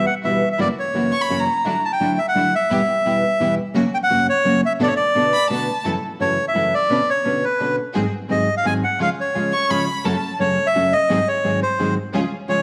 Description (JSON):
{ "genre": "tango", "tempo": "172 BPM", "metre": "3/4", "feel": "rubato", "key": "B minor, F# minor from 5.9 s", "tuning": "A4 = 440 Hz", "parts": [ { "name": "bandoneon", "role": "melody", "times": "0.0-12.6 s", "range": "B4 to A5", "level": "-21 LUFS", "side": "equal", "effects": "none" }, { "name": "nylon-string guitar", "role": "accompaniment", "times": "0.0-12.6 s", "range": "E2 to G#4", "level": "-24 LUFS", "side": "equal", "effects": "none" }, { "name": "clear symphonic string section", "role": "stabs", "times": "0.0-12.6 s", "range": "G3 to B4", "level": "-32 LUFS", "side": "equal", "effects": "none" }, { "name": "warm violin", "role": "second line", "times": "1.1-1.7, 5.3-5.8, 9.5-10.3 s", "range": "A5 to C#6", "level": "-25 LUFS", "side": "equal", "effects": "none" } ], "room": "wet echo chamber reverb, RT60 1.5 s, small room ambience", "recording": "none", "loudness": "-19 LUFS", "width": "mono", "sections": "0.0-5.9 A section; 5.9-12.6 B section", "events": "none", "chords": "0.0 Emadd9; 0.6 F#7; 1.7 Dadd9; 2.7 Em; 3.8 F#; 4.8 Bm7; 5.9 F#m7; 6.9 Bmadd9; 8.0 G#7; 9.0 C#; 10.1 F#m; 11.1 G#7" }